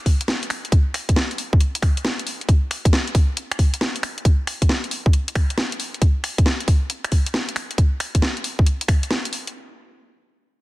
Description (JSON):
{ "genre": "UK garage, two-step garage", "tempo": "136 BPM", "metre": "4/4", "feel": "swing 66% on 16ths", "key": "none", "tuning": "none", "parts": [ { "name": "electronic kick drum", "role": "drums", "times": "0.1-9.0 s", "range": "none", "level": "-16 LUFS", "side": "equal", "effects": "none" }, { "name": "garage drum kit", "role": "drums", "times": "0.1-9.5 s", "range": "finger snaps, hi-hat, snare drum", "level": "-24 LUFS", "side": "equal", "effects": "none" } ], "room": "digital ambience", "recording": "dense, heavily limited modern master", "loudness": "-18 LUFS", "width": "side -19 dB against mid", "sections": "0.0-9.5 A section; 9.5-10.6 B section", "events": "none", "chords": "none" }